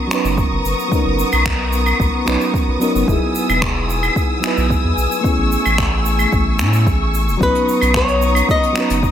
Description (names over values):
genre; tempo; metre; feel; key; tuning
sunset chillout; 111 BPM; 4/4; straight; B major; A4 = 440 Hz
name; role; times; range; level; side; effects
mellow FM electric piano; accompaniment; 0.0-9.1 s; F#3 to B4; -21 LUFS; moving between left 4 dB and right 5 dB; chorus, auto-pan, ping-pong delay
dark symphonic string section; sustained chords; 0.0-9.1 s; A3 to E6; -21 LUFS; left 2 dB; none
soft brush drum kit; drums; 0.1-9.1 s; claves, finger snaps, hi-hat, shaker; -22 LUFS; equal; none
warm sub bass; bass; 0.2-9.1 s; E1 to A2; -19 LUFS; equal; none
electronic kick drum; drums; 0.4-9.1 s; none; -20 LUFS; equal; overdrive
flamenco guitar; melody; 7.4-9.1 s; B4 to D#5; -18 LUFS; left 1 dB; tape echo
room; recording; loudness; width
light reverb, small room ambience; none; -14 LUFS; side -10 dB against mid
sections
0.0-9.1 A section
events
none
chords
0.0 Bmaj9; 3.1 Emaj7; 5.2 Amaj7; 7.4 Bmaj9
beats
0.38 | 0.92 1.46 2.00 2.54 | 3.08 3.62 4.16 4.70 | 5.24 5.78 6.32 6.87 | 7.41 7.95 8.49 9.03